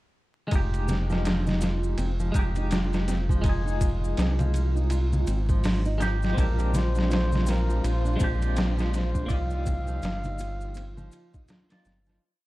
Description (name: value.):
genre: trip hop.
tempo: 82 BPM.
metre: 4/4.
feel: swing 59% on 16ths.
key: F dorian.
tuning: A4 = 438 Hz.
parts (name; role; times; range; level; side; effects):
clean electric guitar; accompaniment; 0.5-12.2 s; Ab3 to D5; -34 LUFS; left 1 dB; tremolo, tape echo.
nylon-string guitar; arpeggios; 0.5-12.2 s; F3 to F4; -36 LUFS; right 3 dB; vintage 12-bit sampler grit, tape echo.
round analog bass; bass; 0.5-12.2 s; F1 to C2; -26 LUFS; equal; none.
trip hop sampler-style drum kit; drums; 0.5-12.2 s; hi-hat, kick drum, ride cymbal, snare drum; -28 LUFS; equal; small room reverb.
maracas and congas; percussion; 0.5-12.2 s; none; -35 LUFS; equal; none.
flickering grainy texture; texture; 1.5-12.2 s; F4; -40 LUFS; right 3 dB; built-in reverb.
trumpet with bucket mute; melody; 6.3-11.5 s; Bb4 to F5; -36 LUFS; equal; vintage 12-bit sampler grit, tape echo.
warm studio string section; sustained chords; 6.4-12.2 s; F3 to F4; -38 LUFS; left 2 dB; none.
room: small room ambience.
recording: dark, warm production, vinyl crackle.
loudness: -23 LUFS.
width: side -18 dB against mid.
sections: 0.5-12.2 groove.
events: fade-out 8.3-12.2.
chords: 0.5 Fm9; 6.4 Bb13; 9.3 Cm11.